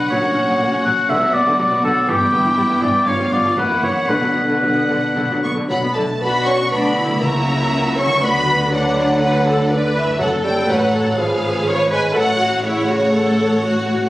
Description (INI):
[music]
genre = classical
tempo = 121 BPM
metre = 4/4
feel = rubato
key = B minor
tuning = A4 = 440 Hz
[part]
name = warm symphonic violin section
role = melody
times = 0.0-13.6 s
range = C#5 to C#6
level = -22 LUFS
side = equal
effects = none
[part]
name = mellow oboe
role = second line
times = 0.0-5.7 s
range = G4 to F#5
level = -17 LUFS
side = left 1 dB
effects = none
[part]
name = warm symphonic violin section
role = second line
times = 0.0-14.1 s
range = D4 to F#5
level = -27 LUFS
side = equal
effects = none
[part]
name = dark French horn section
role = sustained chords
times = 0.0-6.0 s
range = D3 to D4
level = -22 LUFS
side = equal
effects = none
[part]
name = concert harp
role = arpeggios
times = 0.0-14.1 s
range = F#2 to B4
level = -30 LUFS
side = left 2 dB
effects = none
[part]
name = warm symphonic viola section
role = accompaniment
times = 0.1-14.1 s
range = D3 to C#5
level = -22 LUFS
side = equal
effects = none
[part]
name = warm symphonic cello section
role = bass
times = 0.1-14.1 s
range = F#2 to D3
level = -25 LUFS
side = equal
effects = none
[part]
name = warm symphonic double bass section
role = bass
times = 0.1-14.1 s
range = F#1 to D2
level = -27 LUFS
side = right 1 dB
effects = none
[part]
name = mellow bassoon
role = accompaniment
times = 5.7-13.6 s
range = C#3 to C#4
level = -21 LUFS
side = right 1 dB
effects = none
[part]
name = timpani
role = percussion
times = 7.2-10.9 s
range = F#2 to C#3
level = -30 LUFS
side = equal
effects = none
[sound]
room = wet recital hall reverb, RT60 1.8 s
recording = recorded on a phone in the room, studio ambience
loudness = -15 LUFS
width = side -16 dB against mid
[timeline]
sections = 0.0-6.2 A section; 6.2-14.1 B section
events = none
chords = 0.1 F#/A#; 1.1 Bm; 2.1 Em/G; 3.1 G7; 3.6 F#7; 4.1 Bm; 7.2 F#7/C#; 8.2 Bm/D; 10.2 F#m; 11.2 C#7/G#; 12.2 F#m/A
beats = | 0.11 0.61 1.10 1.60 | 2.08 2.58 3.07 3.58 | 4.10 4.63 5.16 5.69 | 6.21 6.72 7.22 7.72 | 8.22 8.72 9.22 9.71 | 10.20 10.69 11.19 11.67 | 12.16 12.65 13.14 13.63